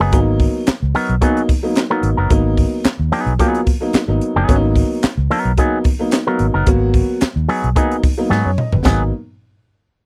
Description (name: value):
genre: funk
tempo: 110 BPM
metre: 4/4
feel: straight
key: G# minor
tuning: A4 = 442 Hz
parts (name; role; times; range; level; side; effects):
- electric guitar with an envelope filter; accompaniment; 0.0-9.0 s; F#3 to A#4; -20 LUFS; equal; none
- vintage muted fingered electric bass; bass; 0.0-9.1 s; F#1 to G#2; -20 LUFS; equal; none
- dark upright piano; stabs; 0.1-9.1 s; F#3 to D#5; -22 LUFS; equal; none
- crisp fusion drum kit; drums; 0.1-9.0 s; handclaps, hi-hat, kick drum, snare drum, splash cymbal, toms; -19 LUFS; equal; none
room: little or no reverb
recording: dry, close 1970s-style studio recording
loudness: -16 LUFS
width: mono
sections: 0.0-8.8 A section; 8.8-10.1 B section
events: drum fill 8.3-8.8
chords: 0.0 G#m7